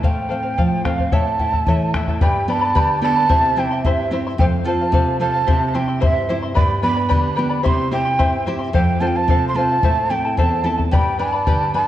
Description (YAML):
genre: andean folk, Andean ensemble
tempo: 110 BPM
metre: 2/4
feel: straight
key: unclear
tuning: A4 = 439 Hz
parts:
  - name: breathy mellow large quena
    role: melody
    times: 0.0-11.9 s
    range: E5 to C6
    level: -20 LUFS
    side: right 2 dB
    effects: none
  - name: charango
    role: accompaniment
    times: 0.0-11.9 s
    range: E4 to C6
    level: -23 LUFS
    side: left 4 dB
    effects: none
  - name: nylon-string guitar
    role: accompaniment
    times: 0.0-11.9 s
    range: E2 to A4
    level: -22 LUFS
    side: right 2 dB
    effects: none
  - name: bombo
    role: percussion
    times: 0.0-11.6 s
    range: none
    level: -20 LUFS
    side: left 1 dB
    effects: none
room: moderate scoring stage reverb, RT60 1.8 s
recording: worn, warbling old tape, cassette tape, warbly pitch drift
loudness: -16 LUFS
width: side -12 dB against mid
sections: 0.0-2.2 A section; 2.2-10.9 B section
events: none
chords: 0.0 F/A; 1.1 A7; 2.2 G; 3.3 C; 4.4 F; 5.5 C; 6.6 G; 7.7 C; 8.7 F; 9.8 Am; 10.9 G